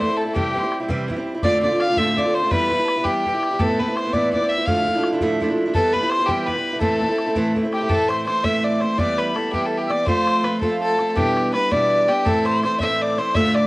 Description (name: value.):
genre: celtic folk, Celtic jig.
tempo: 111 BPM (dotted quarters).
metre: 6/8.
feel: straight.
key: A minor.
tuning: A4 = 440 Hz.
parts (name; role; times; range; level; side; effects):
warm fiddle; melody; 0.0-13.7 s; G4 to F5; -20 LUFS; equal; cassette tape.
bright wooden whistle; second line; 0.0-13.7 s; G5 to F6; -30 LUFS; left 3 dB; cassette tape.
picked acoustic archtop guitar; accompaniment; 0.0-13.7 s; D2 to F4; -22 LUFS; right 1 dB; cassette tape.
bodhran; percussion; 0.0-13.6 s; none; -27 LUFS; equal; none.
room: moderate spring reverb, RT60 1.6 s, small room ambience.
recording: home recording on cassette.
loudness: -18 LUFS.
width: side -21 dB against mid.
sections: 0.0-7.9 A section; 7.9-13.7 B section.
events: none.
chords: 0.3 C; 1.4 Dm7; 2.5 Em; 3.6 Amadd9; 4.7 Dmadd9; 5.7 Em; 6.8 Am; 9.0 Em; 10.1 F; 11.2 Em7; 12.3 Am.